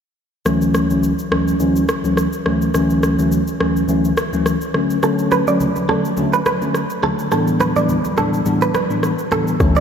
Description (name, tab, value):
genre	afrobeats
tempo	105 BPM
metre	4/4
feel	swing 55% on 16ths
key	D major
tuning	A4 = 440 Hz
part	bell-like tine electric piano	accompaniment	0.5-9.8 s	D2 to D4	-17 LUFS	left 1 dB	lush chorus, low-pass filter
part	afro-pop drum kit	drums	0.5-9.8 s	kick drum, rim click, shaker	-23 LUFS	equal	none
part	direct-recorded clean electric guitar	riff	5.0-9.8 s	A4 to D5	-20 LUFS	right 5 dB	lush chorus, low-pass filter, analog delay
part	congas	percussion	5.3-9.5 s	none	-27 LUFS	equal	none
part	glassy FM pad	sustained chords	9.7-9.8 s	D3 to E5	-33 LUFS	left 1 dB	none
part	deep log drum bass	bass	9.6-9.8 s	D2	-15 LUFS	equal	none
room	wet cathedral reverb, RT60 4.8 s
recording	dreamy mix soaked in reverb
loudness	-15 LUFS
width	side -7 dB against mid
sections	0.5-9.6 A section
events	filter sweep 0.5-9.6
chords	0.5 Dmaj9; 4.7 Bm7; 7.3 A7sus4